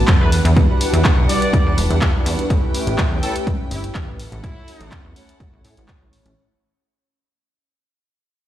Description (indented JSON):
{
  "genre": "filtered disco house",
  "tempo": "124 BPM",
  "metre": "4/4",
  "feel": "straight",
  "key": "unclear",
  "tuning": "A4 = 439 Hz",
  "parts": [
    { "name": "mellow synth brass", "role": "accompaniment", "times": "0.0-6.3 s", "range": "G3 to C#5", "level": "-24 LUFS", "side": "equal", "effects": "chorus, phaser, sidechain pumping" },
    { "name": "warm symphonic violin section", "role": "sustained chords", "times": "0.0-6.3 s", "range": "G3 to A5", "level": "-29 LUFS", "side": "left 1 dB", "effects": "sidechain pumping" },
    { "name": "plucky analog bass", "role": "bass", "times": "0.0-6.3 s", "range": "E1 to A2", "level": "-19 LUFS", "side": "equal", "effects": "tube saturation, sidechain pumping" },
    { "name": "electronic kick drum", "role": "drums", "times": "0.1-6.0 s", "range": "none", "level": "-17 LUFS", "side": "equal", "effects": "overdrive" },
    { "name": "punchy analog drum machine", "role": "drums", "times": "0.1-6.3 s", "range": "handclaps, hi-hat", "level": "-25 LUFS", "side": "equal", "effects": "sidechain pumping on hats" },
    { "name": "clear horn section", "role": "melody", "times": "0.2-5.1 s", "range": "E4 to D5", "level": "-27 LUFS", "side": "equal", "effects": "sidechain pumping, tape echo" }
  ],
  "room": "digital ambience",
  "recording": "played on a big sound system in a bare room, large studio reverb",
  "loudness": "-15 LUFS",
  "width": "side -12 dB against mid",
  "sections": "0.0-6.4 A section",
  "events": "drop 0.0-6.4; fade-out 0.0-6.4",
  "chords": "0.3 Em9; 2.5 A9; 4.2 F#m7/A",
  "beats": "0.08 | 0.56 1.05 1.53 2.02 | 2.50 2.98 3.47 3.95 | 4.43 4.92 5.40 5.89"
}